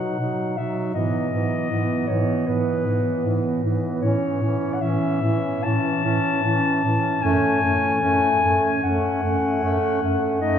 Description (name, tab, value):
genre	classical, lyrical piece for single-reed quartet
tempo	76 BPM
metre	4/4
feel	rubato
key	E major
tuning	A4 = 440 Hz
part	warm clarinet	melody	0.0-10.6 s	B4 to A5	-24 LUFS	left 3 dB	none
part	clear alto saxophone	second line	0.0-10.6 s	B3 to D#4	-26 LUFS	right 2 dB	none
part	warm tenor saxophone	accompaniment	0.0-10.6 s	E3 to A3	-26 LUFS	equal	none
part	mellow bass clarinet	bass	0.2-10.6 s	F#2 to B2	-26 LUFS	right 1 dB	none
room	wet cathedral reverb, RT60 7.7 s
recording	recorded in a church or concert hall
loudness	-19 LUFS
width	side -8 dB against mid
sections	0.0-10.6 A section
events	none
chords	0.0 B; 1.0 E/G#; 4.0 A; 7.2 F#m